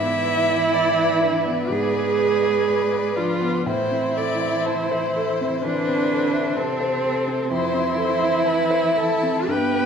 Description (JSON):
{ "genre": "classical, slow romantic movement for piano quintet", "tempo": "55-65 BPM", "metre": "4/4", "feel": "rubato", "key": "A minor", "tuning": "A4 = 440 Hz", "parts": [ { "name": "warm violin", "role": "melody", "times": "0.0-9.9 s", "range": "G4 to E5", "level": "-26 LUFS", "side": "left 5 dB", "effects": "none" }, { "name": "rich cello", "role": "second line", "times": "0.0-9.9 s", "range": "C3 to B3", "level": "-29 LUFS", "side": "right 5 dB", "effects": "none" }, { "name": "rich violin", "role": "second line", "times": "0.0-9.9 s", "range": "C5 to C6", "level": "-32 LUFS", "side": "left 4 dB", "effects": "none" }, { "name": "rich viola", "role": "accompaniment", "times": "0.0-9.9 s", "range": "C4 to B4", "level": "-21 LUFS", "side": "right 3 dB", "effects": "none" }, { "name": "warm baby grand piano", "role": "accompaniment", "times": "0.0-9.9 s", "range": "F2 to B5", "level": "-27 LUFS", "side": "left 1 dB", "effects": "none" } ], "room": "wet recital hall reverb, RT60 1.4 s", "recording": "none", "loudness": "-19 LUFS", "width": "side -6 dB against mid", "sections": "0.0-9.9 A section", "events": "none", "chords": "0.0 E7/G#; 3.7 Am; 7.5 Fmaj7" }